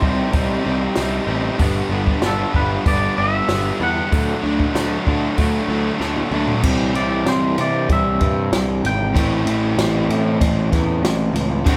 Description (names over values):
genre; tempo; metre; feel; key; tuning
indie rock; 96 BPM; 4/4; straight; unclear; A4 = 438 Hz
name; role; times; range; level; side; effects
twangy electric guitar; melody; 0.0-9.4 s; A4 to G5; -26 LUFS; equal; none
cranked stack guitar; riff; 0.0-11.8 s; G2 to F#4; -28 LUFS; equal; overdrive
raw garage guitar; riff; 0.0-11.8 s; G2 to F#4; -25 LUFS; equal; overdrive
fuzz picked electric bass; bass; 0.0-11.8 s; G1 to C3; -24 LUFS; equal; overdrive
compact cocktail drum kit; drums; 0.0-11.8 s; crash cymbal, hi-hat, kick drum, ride cymbal, snare drum, toms; -24 LUFS; equal; none
room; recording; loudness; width
light reverb; band playing live in one room; -19 LUFS; mono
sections
0.0-6.6 A section; 6.6-11.8 B section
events
drum fill 6.0-6.6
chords
0.0 Cm; 1.6 G; 4.1 D; 6.6 C; 9.2 Am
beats
0.34 0.97 | 1.60 2.23 2.87 3.49 | 4.12 4.75 5.38 6.01 | 6.64 7.27 7.89 8.52 | 9.15 9.78 10.40 11.03 | 11.66